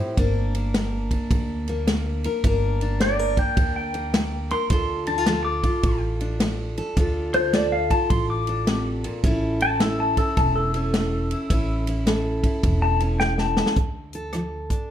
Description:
honky-tonk and classic country; 106 BPM; 4/4; swing 65% on 8ths; A4 = 440 Hz
picked steel-string acoustic guitar; accompaniment; 0.0-14.9 s; G2 to Bb4; -27 LUFS; equal
upright bass; bass; 0.2-14.7 s; E1 to D2; -26 LUFS; equal
natural country drum kit; drums; 0.2-14.8 s; hi-hat, kick drum, ride cymbal, rim click, snare drum; -24 LUFS; equal
pedal steel guitar; melody; 3.0-13.8 s; A4 to D6; -24 LUFS; left 2 dB
moderate large studio reverb, RT60 1.0 s; dark, warm production; -20 LUFS; side -10 dB against mid
0.0-13.8 A section; 13.8-14.9 B section
pedal steel guitar solo 0.0-13.8; drum fill 13.2-13.8
0.2 Gm; 4.7 Dm; 9.2 A; 13.8 Dm

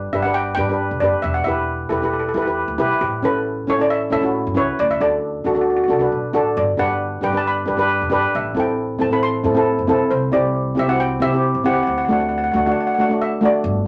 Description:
calypso; 135 BPM; 4/4; straight; A4 = 440 Hz
steel pan; melody; 0.0-13.9 s; F#4 to C6; -24 LUFS; equal
upright bass; bass; 0.0-13.9 s; E1 to C3; -29 LUFS; equal
steel pan; accompaniment; 0.1-13.7 s; A3 to B4; -21 LUFS; equal
wet studio reverb, RT60 0.5 s; -19 LUFS; mono
0.0-13.7 A section
0.0 G; 1.2 Em; 3.0 A; 4.8 D; 6.6 G; 8.3 Am; 10.1 C; 11.9 D

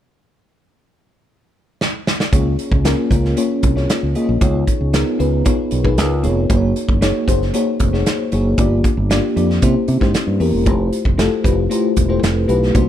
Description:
polished 1980s jazz-funk pop; 115 BPM; 4/4; straight; A4 = 439 Hz
modern studio drum kit; drums; 1.8-12.9 s; hi-hat, kick drum, snare drum; -18 LUFS; right 1 dB
bell-like FM electric piano; accompaniment; 2.3-12.9 s; A3 to Eb5; -18 LUFS; left 2 dB; tremolo, lush chorus
fingered electric bass; bass; 2.3-12.9 s; E1 to C3; -18 LUFS; equal
small room ambience; -14 LUFS; side -11 dB against mid
0.2-2.3 A section; 2.3-12.9 B section
drum fill 1.8-2.3
0.2 N.C.; 2.3 Db6; 4.4 Db9; 6.5 Gb69; 8.6 Gm7; 9.6 C7b9; 10.7 Fmaj9

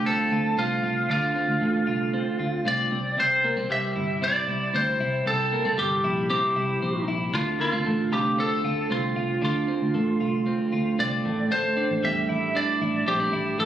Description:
jangly indie pop; 115 BPM; 4/4; straight; D minor; A4 = 440 Hz
lightly driven lead guitar; melody; 0.0-13.7 s; F4 to E5; -25 LUFS; equal; analog delay
twelve-string electric guitar; arpeggios; 0.0-13.7 s; A2 to F4; -27 LUFS; right 1 dB
vintage muted fingered electric bass; bass; 0.0-13.7 s; G1 to E2; -30 LUFS; right 1 dB
light reverb; recorded on a phone in the room, studio reverb; -22 LUFS; side -11 dB against mid
0.0-13.7 A section
0.0 Dm7; 2.9 C; 7.3 Dm7; 11.2 A7sus4

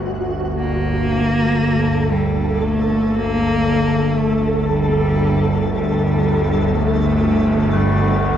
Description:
dark ambient drone; 59 BPM; 4/4; straight; G harmonic minor; A4 = 440 Hz
bowed-like drone; drone; 0.0-8.4 s; G1 to D2; -18 LUFS; equal; built-in reverb
flickering grainy texture; texture; 0.0-8.4 s; F#4 to A4; -23 LUFS; equal; built-in reverb, wide subtle chorus, shimmer reverb
warm cello; melody; 0.6-8.4 s; G3 to Bb3; -19 LUFS; equal; analog delay
tubular bells; arpeggios; 7.7-8.4 s; F#4; -23 LUFS; left 5 dB
wet plate reverb, RT60 2.6 s; dreamy mix soaked in reverb; -15 LUFS; side -10 dB against mid
0.6-8.4 A section
0.0 Dadd11/G; 0.6 Gm

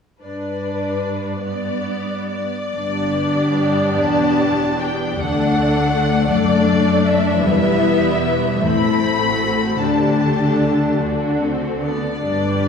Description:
classical; 42-55 BPM (dotted quarters); 6/8; rubato; G major; A4 = 440 Hz
clear symphonic violin section; melody; 0.2-12.7 s; D5 to B5; -24 LUFS; left 2 dB
warm symphonic violin section; second line; 0.2-12.7 s; E4 to D5; -24 LUFS; left 3 dB
clear symphonic viola section; accompaniment; 0.2-12.7 s; G3 to D4; -20 LUFS; equal
clear studio cello section; bass; 0.2-12.7 s; D2 to D3; -23 LUFS; left 2 dB
rich symphonic double bass section; bass; 2.7-12.7 s; E1 to D2; -25 LUFS; left 1 dB
wet concert hall reverb, RT60 1.9 s; heard from further back in the room; -16 LUFS; side -6 dB against mid
0.2-2.7 A section; 2.7-12.7 B section
0.2 G; 5.2 D; 7.4 Em; 8.6 Am; 9.8 Dsus4; 11.0 D

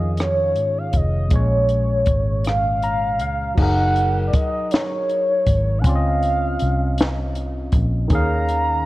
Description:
slow six-eight R&B; 53 BPM (dotted quarters); 6/8; straight; A4 = 441 Hz
mellow horn-like synth lead; melody; 0.0-8.9 s; Db5 to Bb5; -22 LUFS; equal; chorus, phaser
barky tine electric piano; accompaniment; 0.0-8.9 s; Bb2 to Bb5; -25 LUFS; left 1 dB; overdrive, phaser
vintage muted fingered electric bass; bass; 0.0-8.8 s; F1 to Ab2; -21 LUFS; equal
compact cocktail drum kit; drums; 0.2-8.7 s; crash cymbal, hi-hat, kick drum, rim click, snare drum; -21 LUFS; equal
light reverb, small room ambience; worn, warbling old tape, cassette tape, warbly pitch drift; -17 LUFS; side -17 dB against mid
0.0-3.6 A section; 3.6-8.9 B section
break 2.4-3.6; tine electric piano fill 2.4-3.6
0.0 Eb9sus4; 1.3 Bbm7; 3.6 Gb69; 5.8 Dbmaj9; 8.1 Eb9sus4

